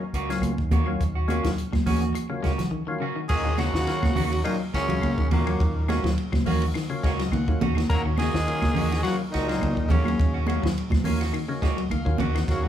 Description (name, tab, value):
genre	afrobeat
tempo	105 BPM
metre	4/4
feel	swing 54% on 16ths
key	Eb minor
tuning	A4 = 440 Hz
part	percussive tonewheel organ	accompaniment	0.0-12.7 s	Gb3 to Bb5	-35 LUFS	left 1 dB	overdrive, slow rotary speaker
part	electric guitar at the edge of break-up	arpeggios	0.0-12.7 s	Db3 to Ab3	-32 LUFS	left 5 dB	none
part	clean electric guitar	stabs	0.1-12.7 s	Bb3 to Gb4	-33 LUFS	right 3 dB	none
part	deep dub fingered electric bass	bass	0.1-12.7 s	Db2 to Eb2	-28 LUFS	equal	none
part	compact cocktail drum kit	drums	0.1-12.6 s	crash cymbal, hi-hat, kick drum, ride cymbal, snare drum	-28 LUFS	equal	none
part	claves	percussion	0.4-12.5 s	none	-43 LUFS	left 6 dB	none
part	congas	percussion	0.4-12.6 s	none	-29 LUFS	right 2 dB	none
part	raspy tenor saxophone	melody	3.3-12.7 s	Bb3 to Bb4	-30 LUFS	equal	none
part	raspy baritone saxophone	second line	3.3-12.7 s	Bb2 to Bb3	-35 LUFS	equal	none
part	trombone with metal mute	second line	3.3-12.7 s	Gb2 to Gb3	-35 LUFS	right 2 dB	none
room	moderate large studio reverb, RT60 1.4 s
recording	band playing live in one room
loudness	-22 LUFS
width	side -10 dB against mid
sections	0.0-3.3 A section; 3.3-12.7 A section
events	break 2.7-3.3; tonewheel organ fill 6.7-7.9, 11.3-12.5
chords	0.0 Ebm7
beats	0.43 | 1.00 1.58 2.15 2.73 | 3.31 3.88 4.45 5.03 | 5.60 6.17 6.75 7.32 | 7.90 8.47 9.04 9.62 | 10.19 10.76 11.33 11.91 | 12.48